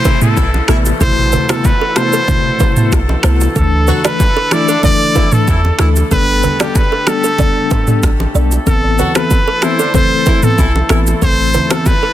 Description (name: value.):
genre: afrobeats.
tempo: 94 BPM.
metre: 4/4.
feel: straight.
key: unclear.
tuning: A4 = 440 Hz.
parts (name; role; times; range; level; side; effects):
bright trumpet; melody; 0.0-12.1 s; G4 to D5; -17 LUFS; equal; ping-pong delay.
warm horn section; second line; 0.0-11.0 s; D3 to F#4; -22 LUFS; left 2 dB; none.
mellow tine electric piano; accompaniment; 0.0-11.9 s; B2 to A4; -18 LUFS; left 3 dB; medium stereo tremolo.
warm brass ensemble; sustained chords; 0.0-12.1 s; D3 to A4; -24 LUFS; left 2 dB; sidechain pumping.
afro-pop drum kit; drums; 0.0-12.0 s; finger snaps, kick drum, rim click, shaker, toms; -15 LUFS; equal; soft clipping on snare.
downlifter; sound effects; 0.0-3.6 s; none; -27 LUFS; left 3 dB; none.
kalimba; riff; 0.1-12.1 s; A4 to D5; -23 LUFS; right 6 dB; ping-pong delay.
bongos and congas; percussion; 0.1-12.0 s; none; -24 LUFS; right 2 dB; none.
clean 808-style bass; bass; 0.4-11.6 s; G1 to E2; -14 LUFS; equal; none.
room: small room reverb.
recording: dense, heavily limited modern master.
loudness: -10 LUFS.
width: side -12 dB against mid.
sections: 0.0-12.1 A section.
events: none.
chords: 0.0 Amadd9; 3.6 Dsus2; 6.1 Gadd9; 8.7 Amadd9.